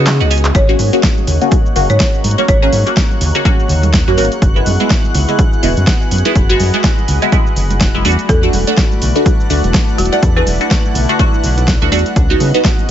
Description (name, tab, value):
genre	deep house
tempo	124 BPM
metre	4/4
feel	swing 58% on 16ths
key	G# minor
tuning	A4 = 440 Hz
part	vibraphone with medium mallets	melody	0.0-0.5 s	G#4	-27 LUFS	left 7 dB	none
part	warm analog pad	sustained chords	0.0-12.9 s	A3 to D#5	-25 LUFS	left 2 dB	chorus, sidechain pumping
part	filtered dub chord stab	stabs	0.0-12.6 s	G#3 to G#4	-17 LUFS	equal	phaser, wide subtle chorus, sidechain pumping, digital delay
part	round analog bass	bass	0.0-12.5 s	E1 to C#3	-15 LUFS	equal	sidechain pumping
part	ethereal airy pad	texture	0.0-12.9 s	C#4 to C#6	-25 LUFS	equal	ensemble chorus, built-in reverb, sidechain pumping
part	deep house drum kit	drums	0.1-12.9 s	handclaps, hi-hat, shaker, snare drum	-19 LUFS	equal	overdrive
part	folk marimba with medium hard mallets	melody	0.5-2.7, 8.3-12.2 s	F#4 to D5	-20 LUFS	left 1 dB	dub echo
part	electronic kick drum	drums	0.5-12.8 s	none	-14 LUFS	equal	none
part	analog string pad	texture	0.5-12.9 s	F#5 to F#6	-28 LUFS	equal	ensemble chorus
part	congas	percussion	0.8-12.9 s	none	-24 LUFS	right 4 dB	none
room	little or no reverb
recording	nothing above 7.7 kHz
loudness	-10 LUFS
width	side -10 dB against mid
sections	0.0-12.9 A section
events	break 0.1-0.5; drum fill 0.1-0.5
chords	0.0 C#9sus4; 0.5 G#9sus4; 4.4 F#9sus4; 8.0 E9sus4; 12.2 C#9sus4